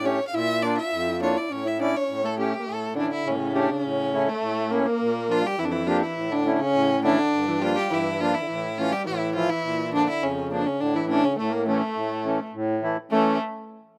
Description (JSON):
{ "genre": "klezmer", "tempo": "104 BPM", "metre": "2/4", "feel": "straight", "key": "A phrygian dominant", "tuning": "A4 = 441 Hz", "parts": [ { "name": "clear violin", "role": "melody", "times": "0.0-13.4 s", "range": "A3 to F5", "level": "-28 LUFS", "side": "equal", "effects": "plate reverb" }, { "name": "breathy alto saxophone", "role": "second line", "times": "0.0-13.4 s", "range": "C#3 to F4", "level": "-31 LUFS", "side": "equal", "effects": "plate reverb" }, { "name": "accordion", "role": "accompaniment", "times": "0.0-13.4 s", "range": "F2 to G4", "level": "-29 LUFS", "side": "equal", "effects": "plate reverb" } ], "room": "light reverb", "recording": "rough home demo mix", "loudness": "-25 LUFS", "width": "mono", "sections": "0.0-3.8 A section; 3.8-13.1 A section", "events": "none", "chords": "0.3 Bb; 1.5 A; 5.0 Bb; 6.2 A; 7.3 Gm; 8.5 A5; 9.6 Bb; 10.8 A" }